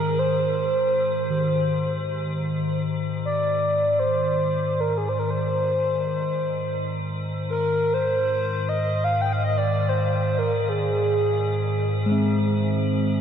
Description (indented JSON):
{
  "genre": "world meditative, free-time meditation music",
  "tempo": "free time",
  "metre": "none",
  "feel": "none",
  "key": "Ab lydian",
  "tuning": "A4 = 440 Hz",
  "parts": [
    { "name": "reedy FM lead", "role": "melody", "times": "0.0-12.4 s", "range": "Ab4 to G5", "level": "-23 LUFS", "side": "equal", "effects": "chorus, tremolo, diffuse ambient delay" },
    { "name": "icy glass pad", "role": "drone", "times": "0.0-13.2 s", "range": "Ab2 to Eb3", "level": "-26 LUFS", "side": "right 1 dB", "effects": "chorus, built-in reverb" },
    { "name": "bronze singing bowl", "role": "texture", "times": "1.3-13.2 s", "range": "Eb3 to C4", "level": "-29 LUFS", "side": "left 1 dB", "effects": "none" }
  ],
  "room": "wet huge ambient reverb, RT60 7.9 s",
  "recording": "dark, warm production",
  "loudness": "-21 LUFS",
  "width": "side -8 dB against mid",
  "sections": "0.0-13.2 A section",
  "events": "none",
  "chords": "none",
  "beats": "free time"
}